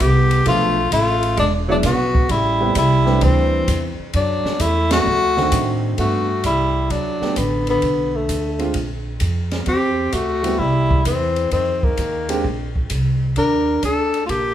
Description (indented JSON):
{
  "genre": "jazz, small-group swing and bop",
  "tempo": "130 BPM",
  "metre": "4/4",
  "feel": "swing 67% on 8ths",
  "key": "E minor",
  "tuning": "A4 = 440 Hz",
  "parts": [
    { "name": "breathy tenor saxophone", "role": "melody", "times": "0.0-14.5 s", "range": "A3 to Bb4", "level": "-20 LUFS", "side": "left 2 dB", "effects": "none" },
    { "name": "warm alto saxophone", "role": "second line", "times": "0.0-14.5 s", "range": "D3 to D4", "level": "-24 LUFS", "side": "right 2 dB", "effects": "none" },
    { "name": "upright bass", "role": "bass", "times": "0.0-14.5 s", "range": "E1 to A2", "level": "-21 LUFS", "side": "equal", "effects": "none" },
    { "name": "open jazz drum kit", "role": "drums", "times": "0.0-14.4 s", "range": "hi-hat, kick drum, ride cymbal, snare drum", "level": "-26 LUFS", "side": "equal", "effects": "none" },
    { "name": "warm grand piano", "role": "accompaniment", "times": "0.5-12.4 s", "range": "Eb3 to B4", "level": "-24 LUFS", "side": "right 3 dB", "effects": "none" }
  ],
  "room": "moderate large studio reverb, RT60 1.3 s",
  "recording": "band playing live in one room",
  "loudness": "-16 LUFS",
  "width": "side -11 dB against mid",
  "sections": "0.0-6.0 A section; 6.0-14.5 B section",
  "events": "band accent 4.8",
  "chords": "0.5 Bm7b5; 1.4 E7; 2.3 Am7; 4.1 E9sus4; 5.1 D7b9; 6.0 Gmaj9; 7.8 Bm7b5; 8.7 Bb5; 9.7 Am7; 11.5 Fm7; 12.4 Bbsus2; 13.4 Ebmaj7",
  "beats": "0.00 | 0.46 0.92 1.38 1.84 | 2.30 2.76 3.22 3.68 | 4.14 4.60 5.06 5.52 | 5.98 6.44 6.90 7.36 | 7.82 8.29 8.75 9.21 | 9.67 10.13 10.59 11.06 | 11.52 11.98 12.44 12.90 | 13.36 13.83 14.29"
}